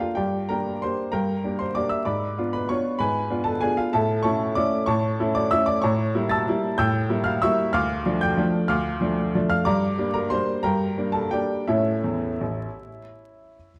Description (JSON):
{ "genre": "classical, piano waltz", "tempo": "154-202 BPM", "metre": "3/4", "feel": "rubato", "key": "unclear", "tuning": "A4 = 440 Hz", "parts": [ { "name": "clear upright piano", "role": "solo", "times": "0.0-13.7 s", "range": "A1 to A6", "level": "-24 LUFS", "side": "equal", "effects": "none" } ], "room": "wet recital hall reverb, RT60 1.5 s", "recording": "dark, warm production, vinyl crackle", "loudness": "-24 LUFS", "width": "mono", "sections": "0.0-13.8 A section", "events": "none", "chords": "0.2 Gm; 2.1 G#dim7; 4.0 A; 5.8 A7b9; 7.7 Dm; 9.7 Gm; 11.7 A" }